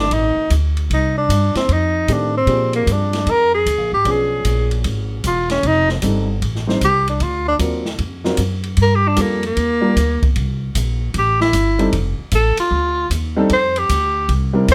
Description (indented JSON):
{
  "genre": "jazz, small-group swing and bop",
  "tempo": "152 BPM",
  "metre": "4/4",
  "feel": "swing 66% on 8ths",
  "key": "unclear",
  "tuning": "A4 = 443 Hz",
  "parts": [
    { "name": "warm tenor saxophone", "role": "melody", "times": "0.0-14.7 s", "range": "Bb3 to C5", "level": "-19 LUFS", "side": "equal", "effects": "none" },
    { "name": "warm baby grand piano", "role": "accompaniment", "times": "0.0-14.7 s", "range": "Eb3 to C5", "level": "-24 LUFS", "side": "equal", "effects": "none" },
    { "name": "upright bass", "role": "bass", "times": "0.0-14.7 s", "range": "E1 to Bb2", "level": "-22 LUFS", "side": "equal", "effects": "none" },
    { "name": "open jazz drum kit", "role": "drums", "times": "0.1-14.7 s", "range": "hi-hat, kick drum, ride cymbal, snare drum", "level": "-27 LUFS", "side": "equal", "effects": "none" }
  ],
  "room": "light reverb",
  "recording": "none",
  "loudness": "-17 LUFS",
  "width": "mono",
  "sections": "0.0-14.7 A section",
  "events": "tenor saxophone solo 0.0-14.7",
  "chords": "0.0 F13 (rootless); 0.9 C5; 1.7 F13; 2.5 Bb13; 4.1 Bdim7; 5.6 F13; 7.2 D7alt; 8.8 Gm7; 10.4 C13; 11.9 F13",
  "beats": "0.12 0.51 | 0.90 1.30 1.69 2.08 | 2.48 2.87 3.27 3.66 | 4.05 4.45 4.84 5.24 | 5.63 6.02 6.42 6.81 | 7.21 7.60 7.99 8.39 | 8.78 9.18 9.57 9.96 | 10.36 10.75 11.14 11.54 | 11.93 12.33 12.72 13.12 | 13.51 13.90 14.30 14.69"
}